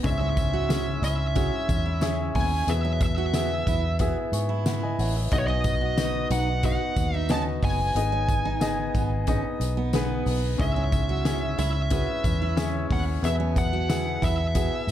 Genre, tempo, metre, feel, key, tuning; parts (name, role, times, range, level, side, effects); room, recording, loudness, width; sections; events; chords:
piano-driven pop; 91 BPM; 4/4; straight; E major; A4 = 440 Hz
warm concert grand piano; accompaniment; 0.0-14.9 s; G#2 to C#6; -30 LUFS; left 3 dB
vintage muted fingered electric bass; bass; 0.0-14.9 s; F#1 to G#2; -27 LUFS; equal
loose indie drum kit; drums; 0.0-14.9 s; hi-hat, kick drum, snare drum; -28 LUFS; equal
tambourine; percussion; 0.0-14.9 s; -47 LUFS; left 5 dB
smooth overdriven lead guitar; melody; 0.1-14.9 s; C#5 to A5; -30 LUFS; right 1 dB
picked steel-string acoustic guitar; riff; 0.2-14.7 s; B3 to F#4; -34 LUFS; right 9 dB
light reverb, studio reverb; dark, warm production; -22 LUFS; side -11 dB against mid
0.0-14.9 A section
0.0 C#m; 2.7 E; 5.3 B; 8.0 G#m; 10.6 C#m; 13.2 E